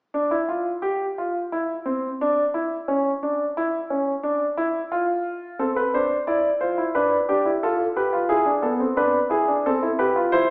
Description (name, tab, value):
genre	classical, baroque-style 3-part fugue for grand piano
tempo	89 BPM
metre	4/4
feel	straight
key	unclear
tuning	A4 = 440 Hz
part	warm concert grand piano	solo	0.1-10.5 s	B3 to D5	-20 LUFS	equal	none
room	wet recital hall reverb, RT60 1.5 s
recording	heard from further back in the room, small speaker sound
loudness	-20 LUFS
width	side -36 dB against mid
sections	0.2-10.5 A section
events	none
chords	0.2 N.C.; 5.6 Am/C (rootless); 7.0 Bm7b5/D; 8.3 E7; 9.7 Am/C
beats	| 0.15 0.84 1.53 2.21 | 2.89 3.57 4.25 4.93 | 5.61 6.29 6.96 7.64 | 8.31 8.98 9.65 10.32